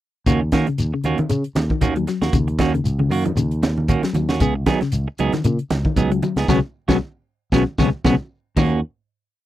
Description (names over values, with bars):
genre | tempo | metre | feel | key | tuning
afrobeat | 116 BPM | 4/4 | swing 55% on 16ths | Eb minor | A4 = 439 Hz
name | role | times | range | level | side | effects
clean electric guitar | arpeggios | 0.3-8.7 s | Cb3 to Gb3 | -22 LUFS | left 5 dB | none
clean electric guitar | stabs | 0.3-8.8 s | Eb3 to Ab4 | -22 LUFS | right 5 dB | none
fingered electric bass | bass | 0.3-8.8 s | Db2 to Db3 | -22 LUFS | equal | none
tight funk drum kit | drums | 0.3-8.7 s | crash cymbal, hi-hat, kick drum, snare drum | -23 LUFS | equal | none
shekere | percussion | 0.3-8.7 s | none | -24 LUFS | left 2 dB | none
congas | percussion | 0.5-8.7 s | none | -25 LUFS | right 4 dB | none
room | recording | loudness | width
little or no reverb | dry, close 1970s-style studio recording | -17 LUFS | side -14 dB against mid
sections
0.3-8.6 groove; 8.6-9.5 final chord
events
band accent 6.5-8.6; drum fill 8.3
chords
0.3 Ebm7; 4.4 Db9sus4; 8.6 Ebm7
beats
| 0.27 0.79 1.30 1.82 | 2.34 2.86 3.38 3.89 | 4.41 4.93 5.45 5.97 | 6.49 7.01 7.53 8.05 | 8.57